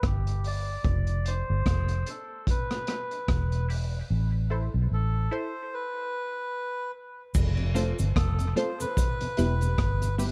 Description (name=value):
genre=dub reggae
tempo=74 BPM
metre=4/4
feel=swing 57% on 16ths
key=unclear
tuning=A4 = 439 Hz
part: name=melodica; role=melody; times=0.0-10.2 s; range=G4 to D5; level=-37 LUFS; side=equal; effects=low-pass filter, dub echo
part: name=vintage muted fingered electric bass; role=bass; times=0.0-10.3 s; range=E1 to B1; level=-29 LUFS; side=equal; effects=none
part: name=crunchy breakbeat drum kit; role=drums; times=0.0-10.3 s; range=crash cymbal, hi-hat, kick drum, rim click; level=-32 LUFS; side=equal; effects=none
part: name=filtered dub chord stab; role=stabs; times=1.2-10.3 s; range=E4 to C5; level=-37 LUFS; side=equal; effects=phaser, high-pass filter, low-pass filter, dub echo
part: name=cabasa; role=percussion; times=7.3-10.3 s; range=none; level=-45 LUFS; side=equal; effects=none
part: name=mellow tonewheel organ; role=accompaniment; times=7.6-10.3 s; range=E2 to F4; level=-38 LUFS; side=equal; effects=slow rotary speaker
part: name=mellow electric guitar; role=accompaniment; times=7.7-10.3 s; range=A3 to B4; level=-35 LUFS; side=equal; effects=subtle chorus, high-pass filter, low-pass filter, dub echo
room=small room ambience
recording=dark, warm production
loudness=-28 LUFS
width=mono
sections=0.0-7.4 A section; 7.4-10.3 B section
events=break 0.0-7.4; part muted 4.1-7.4; stop 5.7-7.4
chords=0.0 G5; 0.8 F; 2.5 Em; 4.1 Am; 5.7 N.C.; 7.4 F; 9.0 Em